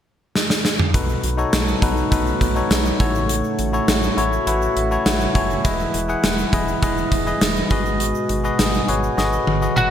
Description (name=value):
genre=1980s-style pop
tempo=102 BPM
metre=4/4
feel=straight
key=B mixolydian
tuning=A4 = 440 Hz
part: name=gated 80s drum kit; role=drums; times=0.4-9.9 s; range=hi-hat, kick drum, snare drum, toms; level=-20 LUFS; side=equal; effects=gated reverb
part: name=bell-like tine electric piano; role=accompaniment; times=0.9-9.9 s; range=G#2 to G#5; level=-22 LUFS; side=left 3 dB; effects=none
part: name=chorused pulse-width pad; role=sustained chords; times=0.9-9.9 s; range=B2 to F#4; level=-26 LUFS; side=right 2 dB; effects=none
part: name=rubbery square bass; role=bass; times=0.9-9.9 s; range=E1 to B1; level=-25 LUFS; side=equal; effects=none
part: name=tube shaker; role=percussion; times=0.9-9.9 s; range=none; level=-41 LUFS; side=right 11 dB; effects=none
part: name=lightly driven lead guitar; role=melody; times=9.8-9.9 s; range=F#4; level=-16 LUFS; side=right 1 dB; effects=lush chorus
room=moderate lush hall reverb, RT60 2.7 s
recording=bright 1980s-style digital production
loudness=-17 LUFS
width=side -9 dB against mid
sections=0.9-9.9 A section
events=drum fill 0.4-0.9, 9.2-9.9; tine electric piano fill 4.5-5.6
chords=0.0 N.C.; 0.9 B7; 3.0 A6; 5.6 Emaj7; 7.7 G#m7